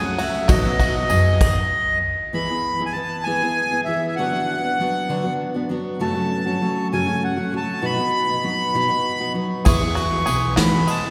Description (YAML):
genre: indie folk with a building arrangement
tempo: 65 BPM (dotted quarters)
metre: 6/8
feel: straight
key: E major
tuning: A4 = 441 Hz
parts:
  - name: accordion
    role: melody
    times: 0.0-11.1 s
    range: D#5 to C#6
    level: -25 LUFS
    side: equal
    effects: none
  - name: bright upright piano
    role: accompaniment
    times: 0.0-1.4, 9.6-11.1 s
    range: F#1 to E5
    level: -35 LUFS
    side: equal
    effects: none
  - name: picked steel-string acoustic guitar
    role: accompaniment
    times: 0.0-11.1 s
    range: F#2 to G#4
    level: -27 LUFS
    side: equal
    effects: none
  - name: bluegrass banjo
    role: arpeggios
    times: 0.0-1.4, 9.7-11.1 s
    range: G#3 to G#4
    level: -30 LUFS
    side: equal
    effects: none
  - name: soft brush drum kit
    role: drums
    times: 0.2-1.5, 9.7-11.0 s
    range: crash cymbal, kick drum, ride cymbal, snare drum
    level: -24 LUFS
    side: equal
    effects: none
  - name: tambourine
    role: percussion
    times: 0.2-1.3, 9.7-11.0 s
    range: none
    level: -41 LUFS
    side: equal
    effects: none
  - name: upright bass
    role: bass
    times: 0.5-1.4, 9.7-10.8 s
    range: B1 to E3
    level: -26 LUFS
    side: equal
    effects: none
room: wet church reverb, RT60 2.9 s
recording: recorded in a church or concert hall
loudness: -21 LUFS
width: mono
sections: 0.0-2.3 A section; 2.3-11.1 A section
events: stop 1.4-2.3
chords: 0.5 B; 2.3 E; 4.2 Bm/D; 6.0 F#m; 7.8 B; 9.7 E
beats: | 0.48 1.40 | 2.32 3.24 | 4.15 5.07 | 5.99 6.91 | 7.82 8.74 | 9.66 10.57